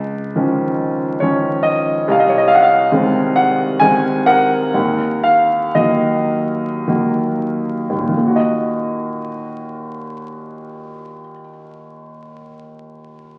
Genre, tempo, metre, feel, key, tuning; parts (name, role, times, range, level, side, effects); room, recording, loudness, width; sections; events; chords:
classical, lyrical solo piano; 46-72 BPM; 3/4; rubato; Eb dorian; A4 = 440 Hz
warm concert grand piano; solo; 0.0-13.4 s; C2 to Ab5; -17 LUFS; equal
wet recital hall reverb, RT60 1.6 s; very old 78 rpm record, vinyl crackle, nothing above 10.8 kHz; -16 LUFS; mono
0.0-8.1 A section; 8.1-12.0 B section
slowing down 2.1-8.1
0.0 Dbadd9; 2.1 Ab/C; 4.7 Ebm